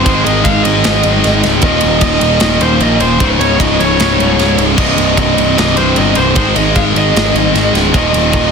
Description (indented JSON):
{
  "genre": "heavy metal",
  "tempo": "152 BPM",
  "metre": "4/4",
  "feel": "straight",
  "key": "unclear",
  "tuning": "A4 = 436 Hz",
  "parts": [
    { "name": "high-gain lead guitar", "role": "melody", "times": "0.0-8.5 s", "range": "C5 to F5", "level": "-16 LUFS", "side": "right 1 dB", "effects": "distortion, digital delay" },
    { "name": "pipe organ, strings celeste", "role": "sustained chords", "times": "0.0-8.5 s", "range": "Db3 to C5", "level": "-27 LUFS", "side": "right 2 dB", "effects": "none" },
    { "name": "heavy high-gain guitar", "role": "riff", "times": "0.0-8.5 s", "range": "C2 to Ab3", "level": "-16 LUFS", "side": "right 16 dB", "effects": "distortion" },
    { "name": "tight distorted guitar", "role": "riff", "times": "0.0-8.5 s", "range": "C2 to Ab3", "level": "-15 LUFS", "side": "left 11 dB", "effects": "distortion" },
    { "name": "fuzz picked electric bass", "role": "bass", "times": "0.0-8.5 s", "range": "C1 to Bb1", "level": "-16 LUFS", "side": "equal", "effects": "overdrive" },
    { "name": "tight metal drum kit", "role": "drums", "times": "0.1-8.4 s", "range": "crash cymbal, kick drum, ride cymbal, snare drum", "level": "-16 LUFS", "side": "right 1 dB", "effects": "soft clipping on kick" }
  ],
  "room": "small room ambience",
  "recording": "dense, heavily limited modern master",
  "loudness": "-9 LUFS",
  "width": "side -6 dB against mid",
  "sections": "0.0-8.5 A section",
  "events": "half time 0.0-8.5",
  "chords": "0.1 Ab; 1.6 Eb; 3.2 Db; 4.8 Cm; 6.4 Ab; 7.9 Eb",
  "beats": "| 0.06 0.45 0.84 1.24 | 1.63 2.03 2.42 2.81 | 3.21 3.60 4.00 4.39 | 4.79 5.18 5.57 5.97 | 6.36 6.75 7.15 7.54 | 7.94 8.33"
}